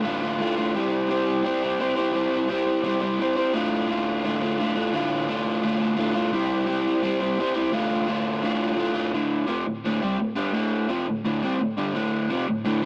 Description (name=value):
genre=rock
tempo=172 BPM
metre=4/4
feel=straight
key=D minor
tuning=A4 = 439 Hz
part: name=crunchy overdriven guitar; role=solo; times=0.0-12.9 s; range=D2 to C5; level=-25 LUFS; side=equal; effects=digital delay
room=wet booth ambience, RT60 0.2 s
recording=rough rehearsal-room recording, warm saturation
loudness=-25 LUFS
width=mono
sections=0.0-9.1 A section; 9.1-12.9 B section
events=none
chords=0.0 Dm; 0.7 C; 3.5 Dm; 6.3 C; 7.7 Dm